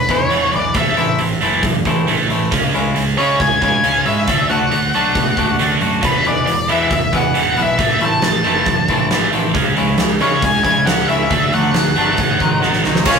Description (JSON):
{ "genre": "quiet-loud alternative rock", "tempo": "136 BPM", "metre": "4/4", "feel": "straight", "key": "unclear", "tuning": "A4 = 440 Hz", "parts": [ { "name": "octave-fuzz lead guitar", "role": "melody", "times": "0.0-13.2 s", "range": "B4 to A5", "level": "-18 LUFS", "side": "left 1 dB", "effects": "distortion, tape echo" }, { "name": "high-gain distorted guitar", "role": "riff", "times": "0.0-13.2 s", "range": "E2 to D4", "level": "-18 LUFS", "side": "right 4 dB", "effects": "distortion" }, { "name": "fuzz picked electric bass", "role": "bass", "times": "0.0-13.2 s", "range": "E1 to C#3", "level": "-24 LUFS", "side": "left 1 dB", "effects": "overdrive" }, { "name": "twangy electric guitar", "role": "arpeggios", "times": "0.1-13.2 s", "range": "C#3 to F#4", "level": "-22 LUFS", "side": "left 3 dB", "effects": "none" }, { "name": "huge arena drum kit", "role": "drums", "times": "0.1-13.2 s", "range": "crash cymbal, hi-hat, kick drum, snare drum", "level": "-19 LUFS", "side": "equal", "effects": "none" } ], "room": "light reverb", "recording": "rough rehearsal-room recording", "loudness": "-13 LUFS", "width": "side -6 dB against mid", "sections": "0.0-13.1 A section", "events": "drum fill 12.6-13.1", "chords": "0.0 E; 0.8 Am; 2.5 C#m; 4.3 D; 6.0 E; 7.8 Am; 9.6 C#m; 11.3 D; 12.2 G#7" }